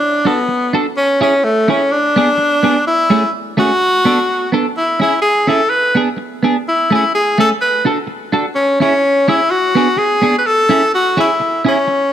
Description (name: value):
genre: ska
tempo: 126 BPM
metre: 4/4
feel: swing 54% on 8ths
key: unclear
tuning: A4 = 440 Hz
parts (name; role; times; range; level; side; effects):
- bright tenor saxophone; melody; 0.0-12.1 s; A3 to B4; -13 LUFS; left 1 dB; slapback echo
- clean electric guitar; accompaniment; 0.3-11.9 s; A3 to A4; -17 LUFS; right 2 dB; analog chorus
room: moderate plate reverb, RT60 3.3 s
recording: dark, warm production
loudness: -12 LUFS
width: side -10 dB against mid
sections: 0.0-12.1 A section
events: none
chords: 0.0 Bm7; 1.0 Amaj7; 1.9 Bm6; 2.9 Amaj7; 3.8 Bm7; 4.8 C#m; 5.7 Bm6; 6.7 Amaj7; 7.6 D6; 8.6 C#m; 9.5 Bm6; 10.4 C#m